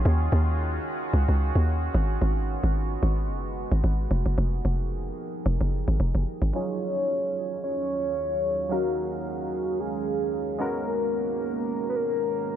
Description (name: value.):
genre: amapiano.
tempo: 111 BPM.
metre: 4/4.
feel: swing 55% on 16ths.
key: Eb minor.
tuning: A4 = 440 Hz.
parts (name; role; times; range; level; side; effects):
deep dark ambient pad; sustained chords; 0.0-12.6 s; Eb2 to F5; -33 LUFS; right 2 dB; chorus, built-in reverb, low-pass filter.
hollow log drum bass; bass; 0.0-6.5 s; F1 to Eb2; -23 LUFS; equal; none.
warm analog keys; accompaniment; 6.5-12.6 s; Gb3 to F5; -33 LUFS; right 2 dB; chorus, low-pass filter.
soft octave-layered synth lead; melody; 6.6-12.6 s; Gb4 to Db5; -27 LUFS; left 1 dB; chorus, phaser, low-pass filter, analog delay.
room: little or no reverb.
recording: none.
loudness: -24 LUFS.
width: side -10 dB against mid.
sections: 0.0-6.5 A section; 6.5-12.6 B section.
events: drop 0.0-6.5; filter sweep 6.5-12.6.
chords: 0.0 Ebm11; 1.9 Abm7; 4.1 Fm11; 6.5 Ebm11; 10.6 Abm11.